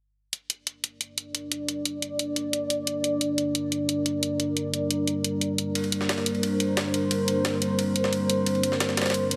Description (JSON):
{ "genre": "dark technical drum and bass", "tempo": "177 BPM", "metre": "4/4", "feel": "straight", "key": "G minor", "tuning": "A4 = 439 Hz", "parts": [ { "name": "deep dark ambient pad", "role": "sustained chords", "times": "1.3-9.4 s", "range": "G3 to D5", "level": "-28 LUFS", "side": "equal", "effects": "chorus, built-in reverb" }, { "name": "electronic hi-hat", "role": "drums", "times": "0.3-9.4 s", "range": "none", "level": "-30 LUFS", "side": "equal", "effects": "none" }, { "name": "jungle sampler-style drum kit", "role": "drums", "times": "5.8-9.4 s", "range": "ride cymbal, snare drum", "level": "-33 LUFS", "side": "equal", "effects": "high-pass filter on cymbals, high-pass filter on snare" } ], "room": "wet lush hall reverb, RT60 1.6 s", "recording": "heavily compressed radio sound, multiband compression, faint mains hum", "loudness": "-27 LUFS", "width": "mono", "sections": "0.3-9.4 A section", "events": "none", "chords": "0.3 Gm" }